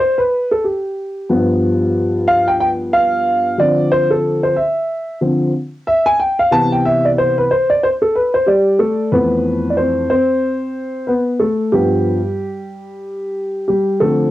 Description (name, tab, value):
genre	hip hop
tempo	92 BPM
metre	4/4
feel	swing 59% on 16ths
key	unclear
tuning	A4 = 440 Hz
part	dark concert grand piano	solo	0.0-14.3 s	F2 to A5	-14 LUFS	equal	cassette tape
room	moderate studio reverb, RT60 0.6 s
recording	home recording on cassette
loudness	-14 LUFS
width	side -15 dB against mid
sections	0.0-9.1 A section; 9.1-14.3 B section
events	grand piano solo 0.0-9.1, 9.1-14.3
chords	0.0 Fsus2 (rootless); 1.3 G7; 3.6 Dm9; 6.5 Cmaj9; 9.1 Fmaj7; 11.7 G7